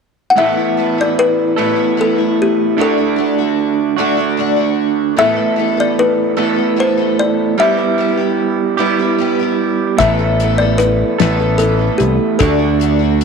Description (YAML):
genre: folk rock and heartland rock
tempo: 50 BPM (dotted quarters)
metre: 6/8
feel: straight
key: unclear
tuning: A4 = 440 Hz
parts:
  - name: kalimba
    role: melody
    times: 0.3-13.2 s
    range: G4 to F#5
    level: -16 LUFS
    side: left 4 dB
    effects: none
  - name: picked twelve-string acoustic guitar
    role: accompaniment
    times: 0.4-13.2 s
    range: A2 to A4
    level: -19 LUFS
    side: left 12 dB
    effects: none
  - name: electric guitar through a small old amp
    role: riff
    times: 0.4-13.2 s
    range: A2 to A4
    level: -16 LUFS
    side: right 11 dB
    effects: harmonic tremolo
  - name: picked electric bass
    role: bass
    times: 10.0-13.2 s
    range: A1 to D2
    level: -16 LUFS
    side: left 1 dB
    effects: none
  - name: damped 70s drum kit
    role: drums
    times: 10.0-13.2 s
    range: hi-hat, kick drum, snare drum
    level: -18 LUFS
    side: left 6 dB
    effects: none
room: moderate spring reverb, RT60 1.9 s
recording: 1960s-style stereo with parts hard left and right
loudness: -12 LUFS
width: side -5 dB against mid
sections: 0.4-13.2 A section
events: none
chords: 0.4 Asus2; 2.8 D; 5.2 Asus2; 7.6 Em/G; 10.0 Asus2; 12.4 D